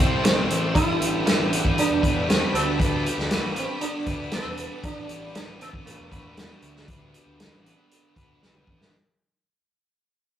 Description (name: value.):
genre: psychedelic rock.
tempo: 117 BPM.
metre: 4/4.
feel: straight.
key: unclear.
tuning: A4 = 439 Hz.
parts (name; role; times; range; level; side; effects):
sitar; melody; 0.0-8.4 s; A3 to E4; -28 LUFS; right 2 dB; none.
string machine, violins; sustained chords; 0.0-8.9 s; A4 to E6; -36 LUFS; equal; ensemble chorus.
overdriven electric guitar; riff; 0.0-8.9 s; A2 to C5; -29 LUFS; equal; none.
fuzz picked electric bass; bass; 0.0-8.9 s; E1 to D2; -31 LUFS; equal; overdrive.
vintage drum kit; drums; 0.2-8.9 s; hi-hat, kick drum, snare drum, toms; -24 LUFS; equal; none.
room: moderate studio reverb, RT60 0.6 s.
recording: rough rehearsal-room recording, tube saturation.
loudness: -21 LUFS.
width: side -10 dB against mid.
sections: 0.0-8.9 A section.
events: fade-out 0.0-8.9; drum fill 8.4-8.9.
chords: 0.0 Am7; 0.8 Gadd9.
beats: 0.24 | 0.75 1.26 1.77 2.28 | 2.79 3.31 3.82 4.33 | 4.84 5.35 5.86 6.37 | 6.88 7.39 7.90 8.41.